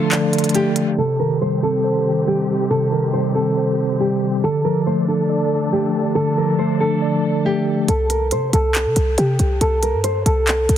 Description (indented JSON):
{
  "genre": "hip hop, trap",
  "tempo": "139 BPM",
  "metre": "4/4",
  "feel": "half-time",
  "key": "unclear",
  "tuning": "A4 = 441 Hz",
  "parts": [
    { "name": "nylon-string guitar", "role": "melody", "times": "0.0-10.8 s", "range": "G4 to C5", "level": "-20 LUFS", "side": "equal", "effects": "low-pass filter" },
    { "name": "mellow tine electric piano", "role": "accompaniment", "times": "0.0-7.9 s", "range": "C3 to D5", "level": "-19 LUFS", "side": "equal", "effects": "medium stereo tremolo, low-pass filter" },
    { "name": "dark symphonic string section", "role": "sustained chords", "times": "0.0-7.8 s", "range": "D3 to A4", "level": "-27 LUFS", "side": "left 1 dB", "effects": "none" },
    { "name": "trap drum kit", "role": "drums", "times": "0.1-0.9, 7.9-10.8 s", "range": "handclaps, hi-hat", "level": "-23 LUFS", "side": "equal", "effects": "none" },
    { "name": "short 808-style bass", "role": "bass", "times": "7.9-10.8 s", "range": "C2 to C3", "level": "-18 LUFS", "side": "equal", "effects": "none" }
  ],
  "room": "light reverb, studio ambience",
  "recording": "heavily compressed radio sound, multiband compression, low-pass filter",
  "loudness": "-16 LUFS",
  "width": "side -10 dB against mid",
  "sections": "1.0-7.9 A section; 7.9-10.8 B section",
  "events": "break 0.0-1.0; filter sweep 1.0-7.9",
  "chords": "0.0 Dm; 1.0 Cm; 4.4 Dm; 7.9 C5"
}